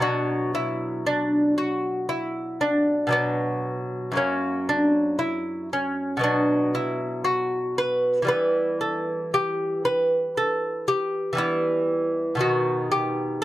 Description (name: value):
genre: classical, baroque-style dance for lute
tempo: 58 BPM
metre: 4/4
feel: rubato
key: B minor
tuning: A4 = 440 Hz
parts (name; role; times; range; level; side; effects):
- lute; solo; 0.0-13.4 s; F#2 to B4; -22 LUFS; equal; none
room: little or no reverb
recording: close, detailed microphones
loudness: -22 LUFS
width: side -15 dB against mid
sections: 0.0-13.4 A section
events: none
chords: 0.0 Bm; 4.2 F#; 6.2 B5; 8.3 Em; 12.4 B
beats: | 0.01 1.06 2.09 3.13 | 4.16 5.20 6.23 7.25 | 8.28 9.33 10.36 11.38 | 12.40 13.43